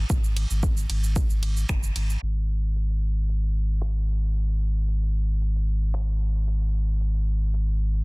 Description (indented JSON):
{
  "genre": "dub techno",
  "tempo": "113 BPM",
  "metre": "4/4",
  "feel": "straight",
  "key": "unclear",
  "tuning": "A4 = 440 Hz",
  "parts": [
    { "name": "pure sine sub bass", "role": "bass", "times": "0.0-8.0 s", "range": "F#1 to G#1", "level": "-23 LUFS", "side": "equal", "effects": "sidechain pumping" },
    { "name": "electronic kick drum", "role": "drums", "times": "0.1-1.8 s", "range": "none", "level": "-24 LUFS", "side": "equal", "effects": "none" },
    { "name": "punchy analog drum machine", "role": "drums", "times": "0.1-8.0 s", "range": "finger snaps, hi-hat, ride cymbal, shaker", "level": "-35 LUFS", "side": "right 3 dB", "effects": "low-pass filter on perc, low-pass filter on hats, low-pass filter on cymbals, soft clipping on snare, low-pass filter on snare" }
  ],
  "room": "little or no reverb",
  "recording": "dense, heavily limited modern master, low-pass filter",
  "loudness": "-23 LUFS",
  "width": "side -30 dB against mid",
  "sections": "0.0-2.2 A section; 2.2-8.0 B section",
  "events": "filter sweep on drum 2.2-8.0; filter sweep 2.2-8.0",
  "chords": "none",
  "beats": "| 0.10 0.63 1.16 1.69 | 2.22 2.75 3.29 3.82 | 4.35 4.88 5.41 5.94 | 6.47 7.00 7.53"
}